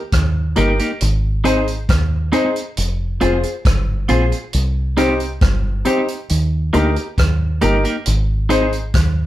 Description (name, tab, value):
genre	roots reggae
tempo	68 BPM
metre	4/4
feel	straight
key	unclear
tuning	A4 = 440 Hz
part	deep dub fingered electric bass	bass	0.1-9.3 s	F1 to Eb2	-18 LUFS	equal	none
part	vintage drum kit	drums	0.1-9.2 s	hi-hat, kick drum, rim click	-20 LUFS	equal	none
part	clean electric guitar	accompaniment	0.6-8.7 s	Bb3 to Ab4	-19 LUFS	right 2 dB	slapback echo
part	clear upright piano	stabs	0.6-8.7 s	Eb4 to C5	-20 LUFS	left 3 dB	slapback echo
room	light reverb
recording	band playing live in one room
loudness	-15 LUFS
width	side -14 dB against mid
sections	0.0-9.3 A section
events	none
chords	0.0 Eb; 1.0 Ab; 2.8 Fm; 4.5 Cm; 6.3 Eb; 8.1 Ab